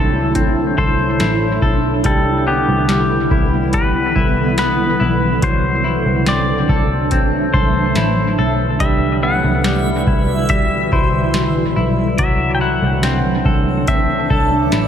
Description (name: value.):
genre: dream pop.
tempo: 71 BPM.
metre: 4/4.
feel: straight.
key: unclear.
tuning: A4 = 441 Hz.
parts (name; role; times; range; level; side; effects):
pedal steel guitar; melody; 0.0-14.9 s; G4 to G5; -21 LUFS; left 2 dB; analog delay.
granular cloud pad; sustained chords; 0.0-14.9 s; B2 to E4; -19 LUFS; right 1 dB; built-in reverb.
semi-hollow electric guitar; arpeggios; 0.0-14.9 s; F#3 to A4; -22 LUFS; left 2 dB; lush chorus, analog delay.
vintage muted picked electric bass; bass; 0.0-14.9 s; A1 to C2; -20 LUFS; equal; none.
booming analog drum machine; drums; 0.4-14.9 s; hi-hat, kick drum, snare drum; -19 LUFS; equal; none.
backwards swelling texture; texture; 9.7-14.9 s; D5 to E5; -30 LUFS; right 3 dB; built-in reverb, analog delay.
room: moderate echo chamber reverb, RT60 2.2 s.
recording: echo-heavy mix.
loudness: -13 LUFS.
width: side -8 dB against mid.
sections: 0.0-14.9 A section.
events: none.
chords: 0.0 D9/C; 2.0 Cmaj7; 5.4 D9/C; 8.8 Cmaj7; 12.2 D9/C.